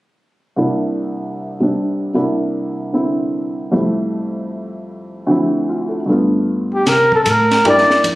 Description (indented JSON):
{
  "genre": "jazz, small-group swing and bop",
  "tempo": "153 BPM",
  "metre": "4/4",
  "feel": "swing 65% on 8ths",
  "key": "C mixolydian",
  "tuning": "A4 = 440 Hz",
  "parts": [
    { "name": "warm upright piano", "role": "accompaniment", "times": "0.6-8.2 s", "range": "C2 to A4", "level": "-17 LUFS", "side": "equal", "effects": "none" },
    { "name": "warm flugelhorn", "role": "melody", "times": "6.7-8.0 s", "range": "G4 to D5", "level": "-12 LUFS", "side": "equal", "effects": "none" },
    { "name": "upright bass", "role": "bass", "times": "6.9-8.2 s", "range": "F2 to C3", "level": "-21 LUFS", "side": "equal", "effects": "none" },
    { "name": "compact cocktail drum kit", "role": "drums", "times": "6.9-8.2 s", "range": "hi-hat, kick drum, ride cymbal, snare drum", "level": "-19 LUFS", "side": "equal", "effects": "none" }
  ],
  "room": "light reverb",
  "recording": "recorded on a phone in the room, studio reverb",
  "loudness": "-14 LUFS",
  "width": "side -18 dB against mid",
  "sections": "0.6-6.9 A section; 6.9-8.2 B section",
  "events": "none",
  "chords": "0.6 C7; 3.7 Fmaj7; 5.3 Dm7; 6.1 G7; 6.9 C9"
}